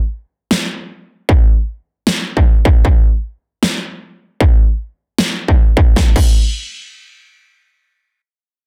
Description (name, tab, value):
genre	future bass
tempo	154 BPM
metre	4/4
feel	swing 54% on 16ths, half-time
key	none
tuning	none
part	big-room dance drum kit	drums	0.5-6.3 s	crash cymbal, snare drum	-20 LUFS	equal	none
part	electronic kick drum	drums	1.3-6.3 s	none	-12 LUFS	equal	distortion
room	little or no reverb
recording	dense, heavily limited modern master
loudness	-14 LUFS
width	mono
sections	0.0-6.0 A section; 6.0-8.7 B section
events	none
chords	none